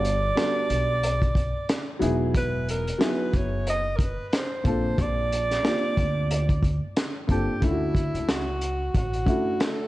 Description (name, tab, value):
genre	hip hop, jazz-hop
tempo	91 BPM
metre	4/4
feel	swing 57% on 16ths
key	D major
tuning	A4 = 440 Hz
part	breathy alto saxophone	melody	0.0-9.9 s	E4 to D#5	-28 LUFS	right 1 dB	slapback echo
part	dark upright piano	accompaniment	0.0-9.9 s	F#3 to A4	-28 LUFS	left 1 dB	none
part	upright bass	bass	0.0-9.2 s	E1 to D2	-28 LUFS	equal	none
part	crunchy breakbeat drum kit	drums	0.0-9.8 s	hi-hat, kick drum, snare drum	-27 LUFS	equal	vintage 12-bit sampler grit
room	light reverb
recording	dark, warm production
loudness	-22 LUFS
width	side -17 dB against mid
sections	0.0-7.6 A section; 7.6-9.9 B section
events	none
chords	0.0 Gmaj9; 2.0 Emaj9; 4.7 Bbmaj9; 7.6 Dmaj9